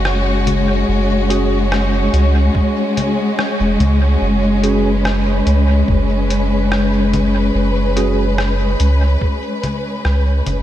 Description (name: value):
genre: ambient dub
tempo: 72 BPM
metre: 4/4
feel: straight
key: unclear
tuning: A4 = 441 Hz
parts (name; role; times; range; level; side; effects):
- warm symphonic string section; sustained chords; 0.0-10.6 s; G#3 to B4; -17 LUFS; left 1 dB; none
- soft dub sub bass; bass; 0.0-10.6 s; E1 to C#2; -16 LUFS; equal; none
- lo-fi sampler-style drum kit; drums; 0.1-10.6 s; congas, hi-hat, rim click; -25 LUFS; left 1 dB; small room ambience, dub echo
- mellow tine electric piano; stabs; 1.3-8.2 s; C#4 to G#4; -25 LUFS; right 3 dB; dub echo
- electronic kick drum; drums; 2.5-9.4 s; none; -17 LUFS; equal; small room ambience
room: moderate lush hall reverb, RT60 2.8 s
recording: dreamy mix soaked in reverb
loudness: -13 LUFS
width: side -12 dB against mid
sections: 0.0-10.6 A section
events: fade-out 8.7-10.6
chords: 0.0 F#sus2